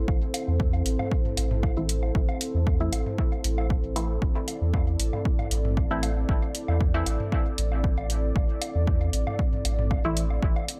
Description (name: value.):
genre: dub techno.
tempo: 116 BPM.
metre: 4/4.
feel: swing 53% on 16ths.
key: A minor.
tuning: A4 = 440 Hz.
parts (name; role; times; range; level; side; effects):
dark analog pad; sustained chords; 0.0-10.8 s; C4 to D5; -36 LUFS; equal; chorus, sidechain pumping.
warm sub bass; bass; 0.0-10.5 s; A1 to E2; -29 LUFS; equal; sidechain pumping.
electronic kick drum; drums; 0.1-10.5 s; none; -28 LUFS; equal; none.
electronic woodblock and toms; percussion; 0.1-10.7 s; none; -38 LUFS; equal; sidechain pumping on perc, sidechain pumping on toms, dub echo.
electronic hi-hat; drums; 0.3-10.8 s; none; -34 LUFS; equal; none.
filtered dub chord stab; stabs; 1.8-10.2 s; E3 to E4; -36 LUFS; equal; chorus, phaser, sidechain pumping, dub echo.
room: little or no reverb.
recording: none.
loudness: -26 LUFS.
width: mono.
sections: 0.0-10.8 A section.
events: none.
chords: 0.0 Am.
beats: | 0.08 0.60 1.12 1.63 | 2.15 2.67 3.19 3.70 | 4.22 4.74 5.25 5.77 | 6.29 6.81 7.32 7.84 | 8.36 8.88 9.39 9.91 | 10.43.